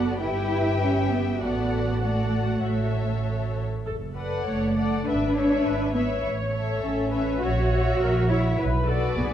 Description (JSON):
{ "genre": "quick classical-period movement for string orchestra", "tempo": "101 BPM", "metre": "4/4", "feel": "uneven beats, rubato", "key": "A major from 3.9 s", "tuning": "A4 = 440 Hz", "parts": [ { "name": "muted studio violin section", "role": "melody", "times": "0.0-9.3 s", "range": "D5 to G5", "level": "-33 LUFS", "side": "left 6 dB", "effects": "none" }, { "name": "muted studio violin section", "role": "second line", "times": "0.0-9.3 s", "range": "F#4 to E5", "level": "-32 LUFS", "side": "left 4 dB", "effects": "none" }, { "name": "muted studio viola section", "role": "accompaniment", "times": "0.0-9.3 s", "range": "F#4 to D5", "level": "-31 LUFS", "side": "equal", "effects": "none" }, { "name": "muted chamber cello section", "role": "bass", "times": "0.0-9.3 s", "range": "A3 to F#4", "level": "-26 LUFS", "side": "right 1 dB", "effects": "none" }, { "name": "muted studio double bass section", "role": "bass", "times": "0.0-9.3 s", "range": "F#1 to B1", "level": "-27 LUFS", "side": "right 2 dB", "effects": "none" } ], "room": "moderate scoring stage reverb, RT60 1.6 s", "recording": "dark, warm production", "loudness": "-22 LUFS", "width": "side -10 dB against mid", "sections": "0.0-9.3 A section", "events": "none", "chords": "0.2 Em/G; 1.4 D/A; 2.6 A; 3.9 D/F#; 5.1 E7/G#; 6.2 A; 7.4 F#7/A#; 8.6 Bm" }